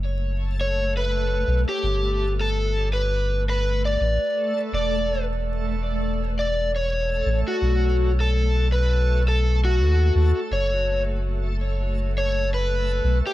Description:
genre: trip hop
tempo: 83 BPM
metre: 4/4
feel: swing 56% on 16ths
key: F# phrygian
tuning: A4 = 439 Hz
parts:
  - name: soft dub sub bass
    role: bass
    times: 0.0-13.2 s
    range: E1 to D#2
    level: -22 LUFS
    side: equal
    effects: none
  - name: backwards swelling texture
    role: texture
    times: 0.0-13.3 s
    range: A3 to A4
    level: -32 LUFS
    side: right 1 dB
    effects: built-in reverb
  - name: overdriven slide guitar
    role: melody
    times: 0.6-13.3 s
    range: F#4 to D5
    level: -25 LUFS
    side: left 1 dB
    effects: tape echo
room: digital ambience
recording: dark, warm production, vinyl crackle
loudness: -20 LUFS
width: side -15 dB against mid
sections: 0.0-13.3 A section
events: none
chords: 0.0 F#m; 1.8 G5; 4.7 E7sus4; 7.6 B7; 10.5 F#m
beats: 0.39 1.11 | 1.83 2.56 3.28 4.00 | 4.73 5.45 6.17 6.90 | 7.62 8.34 9.06 9.79 | 10.51 11.23 11.96 12.68

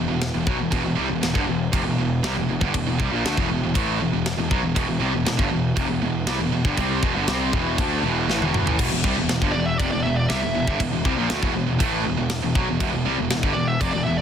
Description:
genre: heavy metal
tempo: 119 BPM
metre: 4/4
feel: straight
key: E phrygian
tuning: A4 = 440 Hz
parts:
  - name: distorted electric guitar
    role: riff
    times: 0.0-14.2 s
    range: E2 to D4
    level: -26 LUFS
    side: left 9 dB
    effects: distortion
  - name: high-gain distorted guitar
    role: riff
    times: 0.0-14.2 s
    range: E2 to D4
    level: -25 LUFS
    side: right 11 dB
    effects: distortion
  - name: fuzz picked electric bass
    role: bass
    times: 0.0-14.2 s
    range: E1 to D2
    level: -27 LUFS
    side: equal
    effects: overdrive
  - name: tight metal drum kit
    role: drums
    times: 0.2-13.9 s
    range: crash cymbal, kick drum, snare drum, toms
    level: -26 LUFS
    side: equal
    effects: soft clipping on kick
  - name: high-gain lead guitar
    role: melody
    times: 9.5-14.2 s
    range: D5 to E5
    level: -27 LUFS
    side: equal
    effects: distortion
room: small room ambience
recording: dense, heavily limited modern master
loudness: -20 LUFS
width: side -8 dB against mid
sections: 0.0-8.8 A section; 8.8-14.2 B section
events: drum fill 8.3-8.8; lead electric guitar solo 8.8-14.2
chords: 0.0 Em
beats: 0.20 | 0.71 1.21 1.72 2.22 | 2.73 3.23 3.74 4.24 | 4.75 5.25 5.76 6.26 | 6.77 7.27 7.78 8.28 | 8.78 9.29 9.79 10.29 | 10.80 11.30 11.80 12.30 | 12.80 13.31 13.81

